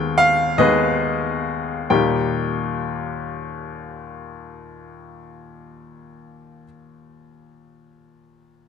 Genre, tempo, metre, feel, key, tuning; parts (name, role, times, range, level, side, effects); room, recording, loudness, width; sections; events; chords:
classical, romantic character piece for solo piano; 48 BPM (dotted quarters); 6/8; rubato; Eb major; A4 = 440 Hz
clear baby grand piano; solo; 0.0-8.7 s; Eb2 to G5; -19 LUFS; left 2 dB
light reverb; close, detailed microphones; -18 LUFS; side -6 dB against mid
0.0-1.9 A section; 1.9-6.9 B section
slowing down 0.0-1.9
0.0 Abm/Eb; 1.9 Eb